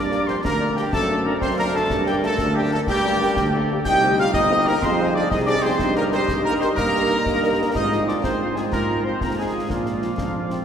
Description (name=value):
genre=military-style march for wind band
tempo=123 BPM (dotted quarters)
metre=6/8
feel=straight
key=Eb major from 3.9 s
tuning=A4 = 439 Hz
part: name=mellow trumpet section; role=melody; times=0.0-10.6 s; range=F4 to G5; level=-24 LUFS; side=equal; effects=none
part: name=clear euphonium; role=second line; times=0.0-10.6 s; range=F3 to G4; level=-28 LUFS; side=right 2 dB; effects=none
part: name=warm woodwind section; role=second line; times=0.0-10.6 s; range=F4 to Eb5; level=-29 LUFS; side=left 1 dB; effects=none
part: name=wooden piccolo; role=second line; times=0.0-10.6 s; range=F5 to G6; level=-27 LUFS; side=left 2 dB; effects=none
part: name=warm trombone section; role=sustained chords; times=0.0-10.6 s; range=F3 to Eb4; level=-31 LUFS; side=right 2 dB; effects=none
part: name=warm tuba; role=bass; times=0.0-10.6 s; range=G1 to Bb2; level=-24 LUFS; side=right 2 dB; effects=none
part: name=warm French horn section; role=accompaniment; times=0.1-10.6 s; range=F3 to Bb4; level=-29 LUFS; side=left 3 dB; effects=none
part: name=concert snare drum, concert bass drum and clash cymbals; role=drums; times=0.1-10.6 s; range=none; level=-31 LUFS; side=left 1 dB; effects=none
room=wet cathedral reverb, RT60 5.5 s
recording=recorded in a church or concert hall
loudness=-18 LUFS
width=side -8 dB against mid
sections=0.0-10.6 A section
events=none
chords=0.0 Gm; 0.9 D7/F#; 1.9 Gm; 3.9 Cm; 4.8 Fm7; 5.8 Eb/G; 7.8 Fm/Ab; 9.7 Bb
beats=0.44 | 0.93 1.42 | 1.90 2.39 | 2.88 3.37 | 3.85 4.34 | 4.83 5.32 | 5.80 6.29 | 6.78 7.27 | 7.75 8.24 | 8.73 9.22 | 9.71 10.19